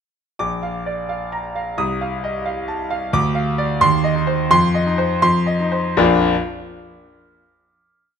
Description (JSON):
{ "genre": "classical, virtuoso piano study", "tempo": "78-90 BPM (dotted quarters)", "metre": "6/8", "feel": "rubato", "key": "Bb major", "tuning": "A4 = 439 Hz", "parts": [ { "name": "clear concert grand piano", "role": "solo", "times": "0.4-6.3 s", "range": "Bb1 to Eb6", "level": "-17 LUFS", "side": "equal", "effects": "none" } ], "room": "moderate recital hall reverb, RT60 1.6 s", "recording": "none", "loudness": "-17 LUFS", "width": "side -7 dB against mid", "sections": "0.4-6.0 A section; 6.0-7.4 final chord", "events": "none", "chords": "0.4 Bb; 1.8 F7/C; 3.1 Dm; 3.8 Cm/Eb; 4.5 F5; 6.0 Bb" }